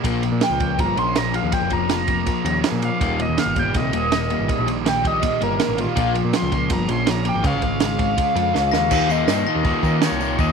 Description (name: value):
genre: indie rock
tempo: 163 BPM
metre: 4/4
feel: straight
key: Eb mixolydian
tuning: A4 = 445 Hz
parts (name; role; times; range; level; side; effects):
- overdriven electric guitar; riff; 0.0-10.5 s; Eb2 to Db4; -25 LUFS; left 14 dB; spring reverb
- overdriven electric guitar; riff; 0.0-10.5 s; Eb2 to F4; -26 LUFS; right 14 dB; lush chorus
- growling picked electric bass; bass; 0.0-10.5 s; Eb1 to Eb3; -25 LUFS; equal; overdrive
- compact cocktail drum kit; drums; 0.0-10.5 s; crash cymbal, kick drum, ride cymbal, snare drum; -24 LUFS; right 4 dB; none
- overdriven synth lead; melody; 0.4-10.5 s; F4 to C6; -23 LUFS; left 1 dB; distortion, phaser
- glockenspiel with hard plastic mallets; second line; 8.7-10.5 s; Bb6 to C7; -30 LUFS; left 15 dB; none
- tambourine; percussion; 8.9-10.5 s; none; -40 LUFS; right 17 dB; none
room: light reverb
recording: 1960s-style stereo with parts hard left and right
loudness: -18 LUFS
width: side -6 dB against mid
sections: 0.0-8.9 A section; 8.9-10.5 B section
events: analog synth lead solo 0.0-8.9; drum fill 8.5-8.9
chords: 0.0 Bbm; 3.0 Eb; 6.0 Bbm; 7.4 Db; 8.9 Eb5